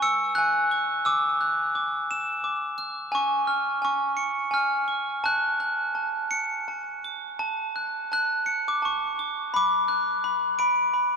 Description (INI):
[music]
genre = children's music, lullaby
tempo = 86 BPM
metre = 3/4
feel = rubato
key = F# minor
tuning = A4 = 440 Hz
[part]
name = glockenspiel with hard plastic mallets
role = solo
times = 0.0-11.2 s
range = G#5 to B#7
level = -23 LUFS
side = equal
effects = none
[sound]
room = wet cathedral reverb, RT60 6.1 s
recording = in a vast, echoing space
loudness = -23 LUFS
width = side -5 dB against mid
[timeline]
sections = 0.0-7.4 A section; 7.4-11.2 B section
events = none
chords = 0.0 C#sus4; 1.0 Dadd9; 3.1 C#; 5.2 F#m; 9.5 Bm